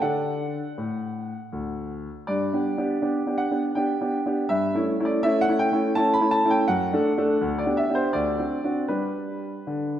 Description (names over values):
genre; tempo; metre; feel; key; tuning
classical-period piano sonatina; 81 BPM; 3/4; rubato; G major; A4 = 440 Hz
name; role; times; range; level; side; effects
clear concert grand piano; solo; 0.0-10.0 s; D2 to B5; -22 LUFS; equal; none
room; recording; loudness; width
wet scoring stage reverb, RT60 1.9 s; recorded in a church or concert hall; -22 LUFS; side -11 dB against mid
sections
0.0-10.0 A section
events
none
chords
0.0 D; 2.3 G; 4.5 A7/G; 6.7 D/F#; 7.4 G/D; 8.1 D7; 8.9 G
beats
| 0.02 0.78 1.53 | 2.29 3.03 3.77 | 4.50 5.24 5.97 | 6.69 7.41 8.14 | 8.90 9.67